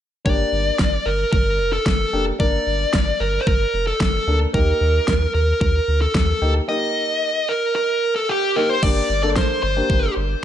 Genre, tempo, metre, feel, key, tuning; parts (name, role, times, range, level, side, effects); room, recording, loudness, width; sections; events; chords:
synth-pop; 112 BPM; 4/4; straight; G minor; A4 = 440 Hz
dark smooth lead guitar; melody; 0.3-10.1 s; G4 to Eb5; -20 LUFS; equal; overdrive, digital delay
dark grand piano; accompaniment; 0.3-10.4 s; Bb3 to Bb4; -26 LUFS; left 2 dB
round analog bass; bass; 0.3-10.4 s; F1 to Eb2; -22 LUFS; equal
pop drum kit; drums; 0.3-10.0 s; crash cymbal, kick drum, snare drum; -21 LUFS; equal; overdrive
light reverb; nothing above 10.9 kHz; -17 LUFS; side -10 dB against mid
0.3-8.8 A section; 8.8-10.4 B section
0.3 Gmadd9; 4.5 Eb; 8.8 Gmadd9